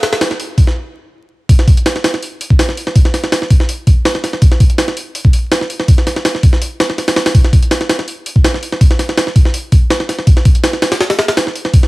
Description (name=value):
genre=drum and bass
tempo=164 BPM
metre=4/4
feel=straight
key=none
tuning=none
part: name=jungle sampler-style drum kit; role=drums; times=0.0-11.9 s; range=hi-hat, kick drum, snare drum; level=-10 LUFS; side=equal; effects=none
room=little or no reverb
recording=vinyl crackle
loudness=-10 LUFS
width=side -20 dB against mid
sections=0.0-1.5 A section; 1.5-11.9 B section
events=build-up 0.0-1.5; stop 0.8-1.5; drop 1.5-11.9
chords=none